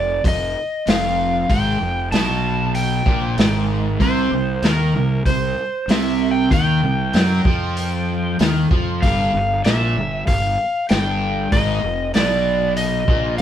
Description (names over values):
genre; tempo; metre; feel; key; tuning
blues rock power trio and southern rock; 96 BPM; 4/4; straight; unclear; A4 = 440 Hz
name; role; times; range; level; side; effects
overdriven slide guitar; melody; 0.0-13.4 s; Bb4 to A5; -22 LUFS; equal; none
overdriven semi-hollow guitar; riff; 0.0-13.4 s; F2 to F#3; -21 LUFS; equal; none
fuzz fingered electric bass; bass; 0.0-13.4 s; F1 to F#2; -23 LUFS; equal; overdrive
vintage drum kit; drums; 0.2-13.4 s; hi-hat, kick drum, snare drum; -20 LUFS; equal; none
room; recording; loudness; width
moderate studio ambience, RT60 0.5 s; band playing live in one room; -16 LUFS; side -10 dB against mid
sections
0.0-13.4 A section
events
none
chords
0.0 N.C.; 4.0 C5; 9.0 Gm7; 11.5 Fm7b5